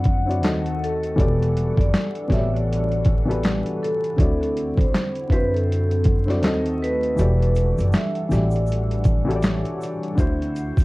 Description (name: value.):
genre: lo-fi hip hop.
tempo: 80 BPM.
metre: 4/4.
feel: swing 57% on 16ths.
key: E minor.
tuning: A4 = 440 Hz.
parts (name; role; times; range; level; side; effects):
vibraphone with soft mallets; melody; 0.0-9.8 s; A4 to F#5; -27 LUFS; equal; low-pass filter, plate reverb.
warm upright piano; accompaniment; 0.0-10.8 s; D3 to E5; -26 LUFS; left 1 dB; cassette tape, low-pass filter, plate reverb.
hollow soft pad; sustained chords; 0.0-10.8 s; D3 to F#5; -32 LUFS; equal; ensemble chorus, low-pass filter.
upright bass; bass; 0.0-10.8 s; E1 to F#2; -23 LUFS; equal; none.
boom bap sampler-style drum kit; drums; 0.0-10.8 s; handclaps, hi-hat, kick drum, snare drum; -20 LUFS; equal; overdrive, vintage 12-bit sampler grit.
egg shaker; percussion; 7.2-10.8 s; none; -51 LUFS; right 4 dB; none.
room: moderate small room reverb, RT60 0.5 s.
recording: dark, warm production, vinyl crackle.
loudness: -19 LUFS.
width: side -21 dB against mid.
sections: 0.0-10.8 A section.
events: kick muted 7.2-8.7.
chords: 0.4 D#dim7; 1.2 Em11; 4.2 D9; 6.4 D#dim7; 7.2 Em11; 10.2 D9.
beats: 0.43 | 1.18 1.93 2.68 3.43 | 4.18 4.93 5.68 6.43 | 7.18 7.93 8.68 9.43 | 10.18.